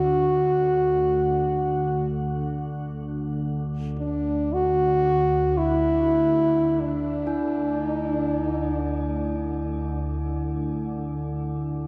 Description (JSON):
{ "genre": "world meditative, free-time meditation music", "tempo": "free time", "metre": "none", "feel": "none", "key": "D major pentatonic", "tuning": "A4 = 440 Hz", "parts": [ { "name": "mellow French horn", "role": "melody", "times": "0.0-9.7 s", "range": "D4 to F#4", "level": "-25 LUFS", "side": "equal", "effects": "shimmer reverb, dub echo" }, { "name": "soft additive organ-like pad", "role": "drone", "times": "0.0-11.9 s", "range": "D2", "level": "-30 LUFS", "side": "equal", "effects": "ensemble chorus, built-in reverb" }, { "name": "bronze singing bowl", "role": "texture", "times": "7.3-11.9 s", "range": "E4", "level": "-34 LUFS", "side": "equal", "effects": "shimmer reverb" } ], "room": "moderate spring reverb, RT60 1.0 s, small room ambience", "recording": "echo-heavy mix", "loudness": "-24 LUFS", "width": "mono", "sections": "0.0-11.9 A section", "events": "none", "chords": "none" }